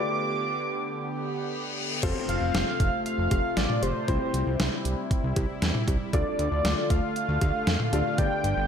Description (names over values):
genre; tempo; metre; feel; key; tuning
synth-pop; 117 BPM; 4/4; straight; D dorian; A4 = 440 Hz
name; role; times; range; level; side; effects
octave-doubled lead; melody; 0.0-8.7 s; C5 to D6; -30 LUFS; right 1 dB; chorus
clear grand piano; accompaniment; 0.0-8.7 s; C4 to D5; -34 LUFS; left 3 dB; slapback echo
sweeping resonant pad; sustained chords; 0.0-8.7 s; C3 to G4; -32 LUFS; left 1 dB; chorus
reverse cymbal and impact; sound effects; 1.3-4.1 s; none; -36 LUFS; left 4 dB; none
fat analog bass; bass; 2.0-8.7 s; F1 to F2; -28 LUFS; equal; none
detuned 8-bit digital drum machine; drums; 2.0-8.6 s; cowbell, crash cymbal, hi-hat, kick drum, snare drum, toms; -28 LUFS; equal; none
room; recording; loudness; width
moderate lush hall reverb, RT60 1.7 s; big arena sound; -24 LUFS; side -8 dB against mid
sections
0.0-2.0 A section; 2.0-8.7 B section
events
break 0.0-2.0; reverse cymbal 1.3-2.0; impact 2.0-4.1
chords
0.0 G; 2.0 F; 4.1 C; 6.1 Dm